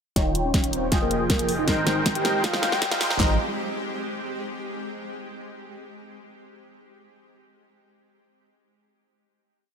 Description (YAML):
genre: future bass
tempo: 158 BPM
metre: 4/4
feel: half-time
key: Ab major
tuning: A4 = 440 Hz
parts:
  - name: soft octave-layered synth lead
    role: melody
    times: 0.2-3.3 s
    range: Bb4 to G5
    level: -28 LUFS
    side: equal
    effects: chorus, phaser, sidechain pumping, ping-pong delay
  - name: shimmering ambient pad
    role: sustained chords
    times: 0.7-3.4 s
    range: Ab3 to G4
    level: -35 LUFS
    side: equal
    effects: chorus, built-in reverb, sidechain pumping
  - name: supersaw stab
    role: riff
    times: 0.2-3.3 s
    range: Eb3 to G5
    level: -27 LUFS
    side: equal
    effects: phaser, sidechain pumping, low-pass filter
  - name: long sustained 808-style bass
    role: bass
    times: 0.2-3.4 s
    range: Eb1 to Ab1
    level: -31 LUFS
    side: equal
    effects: sidechain pumping
  - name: pop drum kit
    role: drums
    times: 0.2-3.3 s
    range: handclaps, kick drum, snare drum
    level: -25 LUFS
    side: equal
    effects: none
  - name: pop drum kit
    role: drums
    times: 0.2-3.2 s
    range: hi-hat, snare drum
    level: -26 LUFS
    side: equal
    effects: none
  - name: riser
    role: sound effects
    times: 1.4-3.2 s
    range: none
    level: -35 LUFS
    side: right 2 dB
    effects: none
room: moderate lush hall reverb, RT60 1.7 s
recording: high-pass filter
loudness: -22 LUFS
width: side -7 dB against mid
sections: 0.2-3.2 build; 3.2-4.7 final chord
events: build-up 0.2-3.2; drum fill 0.2-3.2; filter sweep on supersaw synth 0.2-3.2; filter sweep on soft synth lead 0.2-3.2; filter sweep 0.2-3.2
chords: 0.2 Eb7; 0.9 Fm7; 1.7 Abmaj7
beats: | 0.16 0.54 0.92 1.30 | 1.68 2.06 2.44 2.82 | 3.20